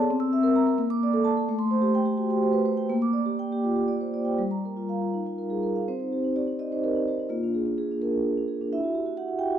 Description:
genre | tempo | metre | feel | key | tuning
classical, contemporary piece for solo vibraphone | 78-87 BPM (dotted quarters) | 6/8 | rubato | unclear | A4 = 440 Hz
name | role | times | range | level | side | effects
vibraphone with medium mallets | solo | 0.0-9.6 s | G3 to E6 | -23 LUFS | equal | none
room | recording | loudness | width
wet recital hall reverb, RT60 1.4 s | dark, warm production | -24 LUFS | side -10 dB against mid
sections
0.0-5.9 A section; 5.9-9.6 B section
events
none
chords
0.1 C7; 0.8 Bbmaj7; 1.5 Am7; 2.9 Bb69; 4.4 Gm7; 5.9 Cm; 7.3 Bb7; 8.7 Emadd9

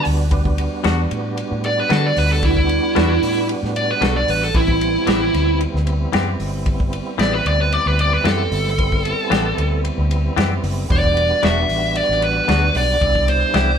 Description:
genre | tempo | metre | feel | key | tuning
straight-eighth soul blues | 113 BPM | 4/4 | straight | E minor | A4 = 441 Hz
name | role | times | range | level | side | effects
dark smooth lead guitar | melody | 0.0-13.8 s | E4 to E5 | -18 LUFS | right 1 dB | overdrive
overdriven tonewheel organ | accompaniment | 0.0-13.8 s | B2 to F#4 | -26 LUFS | right 3 dB | slow rotary speaker, chorus vibrato
warm soul drum kit | drums | 0.0-13.7 s | hi-hat, kick drum, ride cymbal, snare drum | -24 LUFS | equal | none
vintage muted fingered electric bass | bass | 0.1-13.7 s | E1 to D3 | -20 LUFS | equal | none
direct-recorded clean electric guitar | stabs | 0.8-13.7 s | E3 to G4 | -23 LUFS | left 6 dB | none
room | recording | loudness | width
moderate stone room reverb, RT60 1.1 s | band playing live in one room | -15 LUFS | side -7 dB against mid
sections
0.0-13.8 A section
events
lead electric guitar solo 0.0-13.8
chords
0.0 Em9; 4.5 Am9; 10.9 Em9; 13.0 Cmaj7

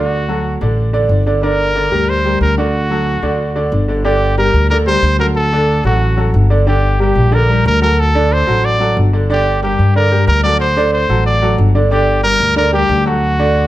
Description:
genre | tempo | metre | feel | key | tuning
latin, salsa | 183 BPM | 4/4 | straight | G harmonic minor | A4 = 440 Hz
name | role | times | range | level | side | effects
bright trumpet | melody | 0.0-13.7 s | F#4 to D5 | -16 LUFS | equal | none
clear grand piano | accompaniment | 0.0-13.7 s | D3 to D5 | -17 LUFS | right 1 dB | none
upright bass | bass | 0.0-13.7 s | G1 to G2 | -14 LUFS | equal | none
room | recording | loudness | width
light reverb | none | -11 LUFS | side -15 dB against mid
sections
0.0-4.1 A section; 4.1-13.7 B section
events
none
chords
0.1 D; 1.4 Gm; 2.7 D; 4.1 Gm; 5.4 D; 6.7 Gm; 8.0 D7; 9.3 Gm; 10.6 D7; 11.9 Gm

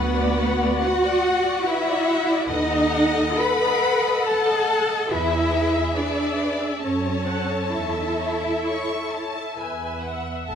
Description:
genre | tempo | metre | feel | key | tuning
classical, slow romantic movement for string orchestra | 68 BPM | 3/4 | uneven beats, rubato | unclear | A4 = 440 Hz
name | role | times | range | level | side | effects
warm studio violin section | melody | 0.0-10.5 s | E5 to C#6 | -30 LUFS | left 4 dB | none
warm studio violin section | second line | 0.0-10.6 s | B4 to B5 | -27 LUFS | left 4 dB | none
warm studio viola section | accompaniment | 0.0-10.6 s | F#4 to F#5 | -27 LUFS | equal | none
dark studio cello section | bass | 0.0-10.6 s | A2 to B4 | -23 LUFS | equal | none
rich studio double bass section | bass | 0.0-10.6 s | A1 to F#2 | -29 LUFS | right 3 dB | none
room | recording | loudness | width
wet recital hall reverb, RT60 1.5 s | none | -20 LUFS | side -8 dB against mid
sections
0.0-10.5 A section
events
none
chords
0.0 Bm/D; 2.5 B7/D#; 5.1 E; 6.8 F#m; 7.7 A/E; 9.6 E

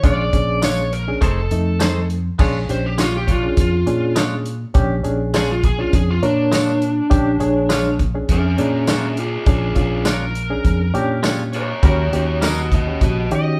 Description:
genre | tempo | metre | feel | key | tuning
straight-eighth soul blues | 102 BPM | 4/4 | straight | unclear | A4 = 440 Hz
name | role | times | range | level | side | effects
overdriven slide guitar | melody | 0.0-13.6 s | C#4 to Eb5 | -24 LUFS | equal | none
barky reed electric piano | accompaniment | 0.0-13.6 s | A3 to C#5 | -26 LUFS | equal | overdrive, tremolo
direct-recorded clean electric guitar | stabs | 0.0-12.6 s | G3 to C#5 | -28 LUFS | equal | none
fingered electric bass | bass | 0.0-13.6 s | F1 to Eb3 | -24 LUFS | equal | none
warm soul drum kit | drums | 0.0-13.5 s | crash cymbal, hi-hat, kick drum, snare drum, tambourine | -21 LUFS | equal | none
room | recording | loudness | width
moderate large studio reverb, RT60 0.8 s | band playing live in one room | -18 LUFS | mono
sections
0.0-2.4 A section; 2.4-13.6 B section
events
electric slide guitar solo 2.4-13.6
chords
0.0 Bb7#9; 1.2 F7#9; 2.4 Bb7#9; 11.8 Eb7#9

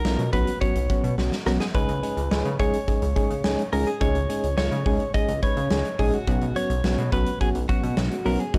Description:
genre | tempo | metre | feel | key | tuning
synth-pop | 106 BPM | 4/4 | straight | unclear | A4 = 440 Hz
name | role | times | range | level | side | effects
direct-recorded clean electric guitar | melody | 0.0-8.6 s | Gb4 to Eb5 | -32 LUFS | equal | none
soft electric-piano-like synth keys | accompaniment | 0.0-8.6 s | F#3 to Cb5 | -29 LUFS | equal | chorus, tremolo
chorused synth bass | bass | 0.0-8.6 s | Bb1 to Db3 | -29 LUFS | equal | none
huge arena drum kit | drums | 0.1-8.6 s | hi-hat, kick drum, snare drum | -29 LUFS | equal | none
room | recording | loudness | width
studio reverb | dry, gritty hardware recording | -24 LUFS | mono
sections
0.0-8.6 A section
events
drum fill 1.2-1.7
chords
0.0 Bsus2; 1.7 Dbsus2; 6.3 Bsus2

